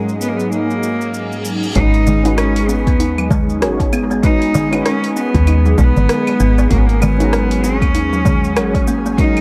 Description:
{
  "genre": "organic downtempo",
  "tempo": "97 BPM",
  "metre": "4/4",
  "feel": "swing 59% on 16ths",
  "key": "G# minor",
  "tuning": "A4 = 440 Hz",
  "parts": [
    { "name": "bright cello", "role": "melody", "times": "0.0-9.4 s", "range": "G#3 to D#4", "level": "-22 LUFS", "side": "equal", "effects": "analog delay" },
    { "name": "deep mellow chord stab", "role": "accompaniment", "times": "0.0-9.4 s", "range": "G#3 to C#5", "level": "-28 LUFS", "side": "equal", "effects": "chorus, cassette tape, sidechain pumping, analog delay" },
    { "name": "airy breathy pad", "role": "sustained chords", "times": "0.0-9.4 s", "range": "G#2 to G#4", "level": "-25 LUFS", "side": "equal", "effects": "chorus, phaser, sidechain pumping" },
    { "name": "bronze singing bowl", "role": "texture", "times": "0.0-1.8 s", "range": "none", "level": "barely audible", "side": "none", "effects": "none" },
    { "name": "deep house drum kit", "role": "drums", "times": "0.1-9.4 s", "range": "claves, hi-hat, rim click, shaker", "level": "-26 LUFS", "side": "equal", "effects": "overdrive, analog delay" },
    { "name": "reverse cymbal", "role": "sound effects", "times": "1.0-1.8 s", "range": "none", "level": "-33 LUFS", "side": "equal", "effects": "none" },
    { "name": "kalimba", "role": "arpeggios", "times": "1.8-9.4 s", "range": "F#3 to D#4", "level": "-22 LUFS", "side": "equal", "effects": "analog delay" },
    { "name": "woody FM bass", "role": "bass", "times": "1.8-9.4 s", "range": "G#1 to D#2", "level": "-19 LUFS", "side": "equal", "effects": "none" },
    { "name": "electronic kick drum", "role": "drums", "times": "1.8-9.3 s", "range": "none", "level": "-19 LUFS", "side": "equal", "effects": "overdrive" },
    { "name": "darbuka", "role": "percussion", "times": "2.1-9.2 s", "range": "none", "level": "-24 LUFS", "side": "equal", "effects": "none" }
  ],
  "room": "light reverb",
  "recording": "echo-heavy mix",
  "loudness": "-15 LUFS",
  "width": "mono",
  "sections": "0.0-1.8 A section; 1.8-9.4 B section",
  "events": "reverse cymbal 1.0-1.8",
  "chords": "0.0 F#/G#; 1.8 G#m7; 6.7 F#/G#",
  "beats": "0.52 1.14 | 1.76 2.38 3.00 3.62 | 4.24 4.85 5.47 6.09 | 6.71 7.33 7.95 8.56 | 9.18"
}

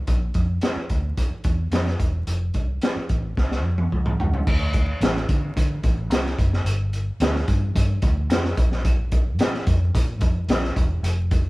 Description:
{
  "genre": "uptempo 1960s-style soul",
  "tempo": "110 BPM",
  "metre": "4/4",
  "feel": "straight",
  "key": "unclear",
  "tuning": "A4 = 442 Hz",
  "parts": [
    { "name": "vintage muted fingered electric bass", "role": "bass", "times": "0.0-11.5 s", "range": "E1 to D3", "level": "-24 LUFS", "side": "equal", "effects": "none" },
    { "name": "crunchy breakbeat drum kit", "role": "drums", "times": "0.1-11.4 s", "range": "crash cymbal, hi-hat, kick drum, snare drum, toms", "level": "-22 LUFS", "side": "equal", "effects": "none" }
  ],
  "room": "moderate studio reverb, RT60 0.9 s",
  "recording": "band playing live in one room, vinyl crackle",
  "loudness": "-20 LUFS",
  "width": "side -21 dB against mid",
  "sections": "0.0-4.5 A section; 4.5-11.5 B section",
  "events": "drum fill 3.4-4.5",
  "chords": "none",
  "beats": "| 0.08 0.63 1.18 1.73 | 2.27 2.82 3.37 3.92 | 4.47 5.02 5.56 6.11 | 6.66 7.21 7.75 8.30 | 8.85 9.39 9.94 10.49 | 11.04"
}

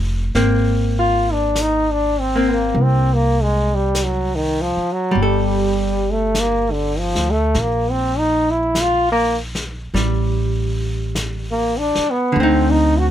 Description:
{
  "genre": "jazz ballad",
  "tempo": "50 BPM",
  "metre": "4/4",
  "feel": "swing 68% on 8ths",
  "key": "G minor",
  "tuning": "A4 = 440 Hz",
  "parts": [
    { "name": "archtop guitar, miked and amplified", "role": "accompaniment", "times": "0.0-13.1 s", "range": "D3 to C5", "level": "-21 LUFS", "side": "equal", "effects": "none" },
    { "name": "upright bass", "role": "bass", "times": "0.0-13.1 s", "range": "F1 to D2", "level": "-20 LUFS", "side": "equal", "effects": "none" },
    { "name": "vintage brush drum kit", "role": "drums", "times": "0.3-13.1 s", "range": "brushed snare drum, hi-hat, snare drum", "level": "-29 LUFS", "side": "left 2 dB", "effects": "none" },
    { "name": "bright trombone", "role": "melody", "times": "1.0-13.1 s", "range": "D3 to F#4", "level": "-18 LUFS", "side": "equal", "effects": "none" }
  ],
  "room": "little or no reverb",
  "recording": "none",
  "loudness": "-16 LUFS",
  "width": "side -11 dB against mid",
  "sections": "0.0-13.1 A section",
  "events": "trombone solo 0.0-13.1",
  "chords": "0.4 Abadd9; 5.2 Gmadd9; 10.0 A7(no3); 12.4 D7(no3)",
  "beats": "| 0.35 1.55 2.75 3.95 | 5.15 6.35 7.55 8.75 | 9.95 11.15 12.36"
}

